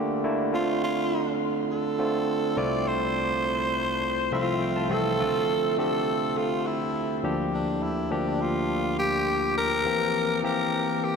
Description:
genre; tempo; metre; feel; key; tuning
pop; 103 BPM; 4/4; straight; unclear; A4 = 439 Hz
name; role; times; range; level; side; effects
barky tine electric piano; accompaniment; 0.0-11.2 s; C2 to C6; -26 LUFS; equal; shimmer reverb
growling tenor saxophone; melody; 0.5-11.2 s; D4 to D5; -27 LUFS; equal; shimmer reverb, ping-pong delay
room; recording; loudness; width
wet cathedral reverb, RT60 4.8 s; dreamy mix soaked in reverb; -24 LUFS; side -5 dB against mid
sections
0.0-5.2 A section; 5.2-11.2 B section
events
tine electric piano fill 4.0-5.2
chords
0.0 Bbmaj7; 0.5 Dm7; 2.6 Fmaj7/C; 5.2 Dm7; 7.2 Bb6/D; 9.9 C7

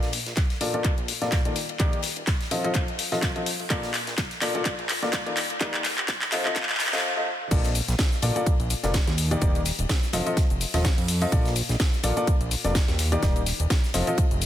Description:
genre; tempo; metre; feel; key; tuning
piano house; 126 BPM; 4/4; swing 56% on 16ths; Bb major; A4 = 445 Hz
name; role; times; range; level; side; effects
dark baby grand piano; riff; 0.0-14.2 s; Bb2 to Eb5; -29 LUFS; left 1 dB; sidechain pumping, low-pass filter, ping-pong delay
fat analog bass; bass; 0.0-14.5 s; Eb1 to F2; -28 LUFS; equal; sidechain pumping, high-pass filter
house drum kit; drums; 0.0-14.5 s; crash cymbal, handclaps, hi-hat, shaker, snare drum; -28 LUFS; left 1 dB; high-pass filter on perc, soft clipping on snare, high-pass filter on snare, high-pass filter on hats, high-pass filter on cymbals, high-pass filter on room
modern studio drum kit; drums; 0.0-14.5 s; hi-hat, ride cymbal, snare drum; -37 LUFS; left 1 dB; high-pass filter on cymbals, high-pass filter on hats, high-pass filter on snare, high-pass filter on room
electronic kick drum; drums; 0.4-14.3 s; none; -24 LUFS; equal; none
room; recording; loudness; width
light reverb, studio ambience; dense, heavily limited modern master, high-pass filter; -22 LUFS; side -11 dB against mid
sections
0.0-7.5 A section; 7.5-14.5 B section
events
build-up 0.0-7.5; drum fill 0.0-7.0; filter sweep 0.0-7.5; break 7.0-7.5; drop 7.5-14.5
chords
0.0 Bbmaj7; 1.6 Ebmaj7; 2.5 F7; 3.7 Bbmaj7; 5.4 Ebmaj7; 6.3 F7; 7.5 Bbmaj7; 9.2 Ebmaj7; 10.1 F7; 11.3 Bbmaj7; 13.0 Ebmaj7; 13.9 F7

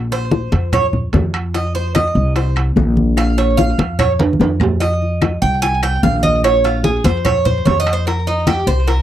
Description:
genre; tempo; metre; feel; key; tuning
latin, Cuban son and guajira; 147 BPM; 4/4; straight; F minor; A4 = 437 Hz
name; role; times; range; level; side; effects
upright bass; bass; 0.0-9.0 s; Bb1 to F2; -17 LUFS; equal; none
Cuban tres; arpeggios; 0.1-9.0 s; Eb4 to Ab5; -18 LUFS; right 3 dB; slapback echo
bongos; percussion; 0.1-9.0 s; none; -24 LUFS; left 8 dB; none
congas; percussion; 0.1-9.0 s; none; -20 LUFS; equal; none
timbales; percussion; 0.1-9.0 s; none; -23 LUFS; right 5 dB; none
claves; percussion; 0.7-8.7 s; none; -29 LUFS; left 17 dB; none
room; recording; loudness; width
little or no reverb; dry, close 1970s-style studio recording; -13 LUFS; side -11 dB against mid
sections
0.0-9.0 A section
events
Cuban tres solo 0.0-9.0; drum fill 4.2-4.8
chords
0.0 Bb5; 1.5 F5; 3.2 Bb5; 4.8 F5; 6.4 Bb5; 8.1 F5

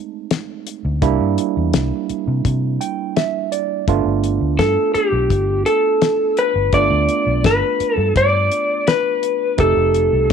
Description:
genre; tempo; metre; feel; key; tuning
straight-eighth soul blues; 84 BPM; 4/4; straight; unclear; A4 = 437 Hz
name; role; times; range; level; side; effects
barky tine electric piano; accompaniment; 0.0-10.3 s; G3 to G5; -22 LUFS; right 14 dB; none
damped 70s drum kit; drums; 0.3-10.3 s; hi-hat, kick drum, snare drum; -20 LUFS; left 5 dB; none
vintage muted fingered electric bass; bass; 0.8-10.3 s; F1 to C3; -20 LUFS; equal; none
electric slide guitar; melody; 4.6-10.3 s; G4 to D5; -16 LUFS; left 1 dB; slapback echo
room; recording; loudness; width
small room ambience; 1960s-style stereo; -15 LUFS; side -7 dB against mid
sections
0.0-10.3 A section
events
tine electric piano fill 2.4-3.9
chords
0.0 F#dim7 (rootless); 1.0 C7; 3.9 G7; 9.6 F7

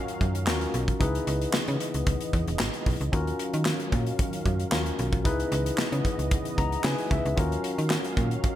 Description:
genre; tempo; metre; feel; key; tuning
early-eighties boogie funk; 113 BPM; 4/4; straight; Eb phrygian; A4 = 440 Hz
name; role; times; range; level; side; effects
barky tine electric piano; accompaniment; 0.0-8.6 s; Db4 to Bb5; -31 LUFS; left 2 dB; none
warm analog pad; sustained chords; 0.0-8.6 s; Db3 to F5; -35 LUFS; equal; chorus
modern studio drum kit; drums; 0.1-8.6 s; handclaps, hi-hat, kick drum, snare drum; -28 LUFS; equal; gated reverb
slap-like FM bass; bass; 0.2-8.4 s; Fb1 to Eb3; -28 LUFS; equal; none
room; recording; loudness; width
light reverb, small room reverb; bright 1980s-style digital production; -24 LUFS; side -12 dB against mid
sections
0.0-8.6 A section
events
tine electric piano fill 6.3-7.4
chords
0.0 Ebm9; 1.0 Dbm9; 3.1 Ebm9; 5.3 Dbm9; 7.4 Ebm9

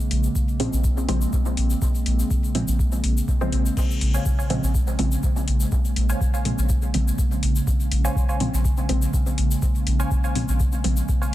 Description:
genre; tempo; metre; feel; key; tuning
dub techno; 123 BPM; 4/4; swing 53% on 16ths; Bb minor; A4 = 442 Hz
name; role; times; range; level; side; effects
warbly tape-like pad; sustained chords; 0.0-11.3 s; Db3 to Db4; -29 LUFS; right 1 dB; chorus, built-in reverb, sidechain pumping
egg shaker; percussion; 0.0-11.3 s; none; -36 LUFS; left 4 dB; none
soft dub sub bass; bass; 0.1-11.0 s; Bb1 to Bb2; -22 LUFS; equal; sidechain pumping
booming analog drum machine; drums; 0.1-10.9 s; crash cymbal, hi-hat; -31 LUFS; left 4 dB; none
electronic kick drum; drums; 0.4-11.2 s; none; -23 LUFS; equal; none
filtered dub chord stab; stabs; 0.6-11.0 s; Db3 to C4; -29 LUFS; equal; chorus, phaser, sidechain pumping, dub echo
filtered dub chord stab; riff; 4.1-11.3 s; C5 to Ab5; -34 LUFS; right 2 dB; phaser, sidechain pumping, dub echo
room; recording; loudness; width
light reverb; dense, heavily limited modern master; -20 LUFS; side -14 dB against mid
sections
0.0-11.3 A section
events
none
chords
0.0 Bbm9

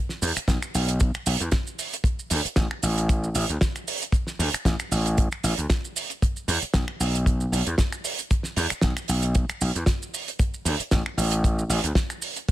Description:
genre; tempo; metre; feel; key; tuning
nu-disco, nu disco; 115 BPM; 4/4; swing 54% on 16ths; unclear; A4 = 440 Hz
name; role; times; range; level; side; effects
damped 70s drum kit; drums; 0.1-12.5 s; finger snaps, hi-hat, shaker, snare drum; -27 LUFS; right 3 dB; studio reverb
gritty slap bass; bass; 0.2-11.9 s; A1 to E2; -24 LUFS; equal; overdrive
kick drum; drums; 0.5-12.5 s; none; -23 LUFS; equal; studio reverb
room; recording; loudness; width
little or no reverb; none; -22 LUFS; side -14 dB against mid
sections
0.0-12.5 A section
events
none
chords
none

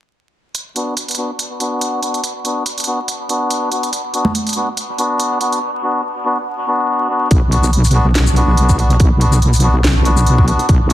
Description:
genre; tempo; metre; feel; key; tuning
deep dubstep; 142 BPM; 4/4; swing 55% on 16ths, half-time; B minor; A4 = 440 Hz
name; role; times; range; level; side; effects
garage drum kit; drums; 0.5-10.9 s; hi-hat, shaker, snare drum; -21 LUFS; right 1 dB; none
melodica; stabs; 0.8-10.9 s; B3 to F#4; -18 LUFS; left 1 dB; low-pass filter, dub echo
congas; percussion; 4.2-4.3 s; none; -20 LUFS; right 1 dB; dub echo
wobble bass; bass; 7.3-10.9 s; B1; -12 LUFS; equal; chorus, tube saturation
electronic kick drum; drums; 7.3-10.8 s; none; -13 LUFS; equal; none
room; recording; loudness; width
light reverb, digital ambience; dense, heavily limited modern master, vinyl crackle; -13 LUFS; side -13 dB against mid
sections
0.5-7.3 A section; 7.3-10.9 B section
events
none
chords
0.5 Bm

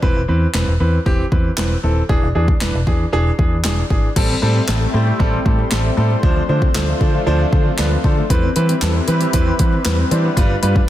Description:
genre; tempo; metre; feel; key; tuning
dance-pop; 116 BPM; 4/4; straight; A minor; A4 = 440 Hz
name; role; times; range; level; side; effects
clear concert grand piano; accompaniment; 0.0-10.8 s; E3 to C5; -21 LUFS; right 1 dB; sidechain pumping
vintage muted fingered electric bass; bass; 0.0-10.8 s; D#1 to E3; -18 LUFS; equal; sidechain pumping
deep house drum kit; drums; 0.0-10.9 s; crash cymbal, handclaps, hi-hat, kick drum, snare drum; -18 LUFS; equal; overdrive
lush unison pad; sustained chords; 4.5-10.9 s; G3 to C5; -24 LUFS; equal; chorus, phaser, sidechain pumping
flamenco guitar; arpeggios; 4.2-10.9 s; F3 to C5; -26 LUFS; left 8 dB; sidechain pumping, digital delay
room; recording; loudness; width
little or no reverb; dense, heavily limited modern master; -14 LUFS; side -13 dB against mid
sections
0.0-4.2 A section; 4.2-10.9 B section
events
none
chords
0.0 Cmaj7/E; 2.1 E7; 4.2 Am7; 6.2 Dm7; 8.3 Cmaj7/E; 10.4 G7

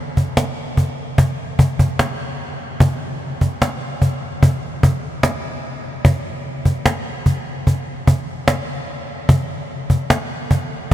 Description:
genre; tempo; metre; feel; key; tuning
dream pop; 74 BPM; 4/4; straight; none; none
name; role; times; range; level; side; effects
cajon; drums; 0.2-10.9 s; none; -17 LUFS; equal; none
room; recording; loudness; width
moderate huge ambient reverb, RT60 7.5 s; dreamy mix soaked in reverb; -17 LUFS; side -13 dB against mid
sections
0.0-10.9 A section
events
none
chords
none

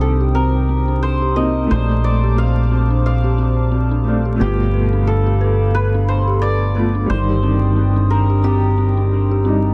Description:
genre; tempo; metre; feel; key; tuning
trip hop; 89 BPM; 4/4; swing 58% on 16ths; C dorian; A4 = 440 Hz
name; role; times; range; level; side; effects
santur; melody; 0.0-9.7 s; G4 to F5; -26 LUFS; equal; vintage 12-bit sampler grit, dub echo
warm upright piano; accompaniment; 0.0-9.7 s; B2 to F4; -26 LUFS; equal; tremolo, tape echo
dark analog pad; sustained chords; 0.0-9.7 s; D4 to Eb6; -30 LUFS; equal; chorus
dark detuned synth bell; arpeggios; 0.0-9.7 s; C4 to B4; -27 LUFS; equal; chorus, tape echo
deep dub fingered electric bass; bass; 0.0-9.7 s; G1 to C2; -18 LUFS; equal; tube saturation
room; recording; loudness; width
small room ambience; echo-heavy mix, vinyl crackle; -17 LUFS; mono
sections
0.0-9.7 A section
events
none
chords
0.0 Cm7; 1.7 Bbmaj9; 4.4 G9; 7.1 Ebmaj7/G

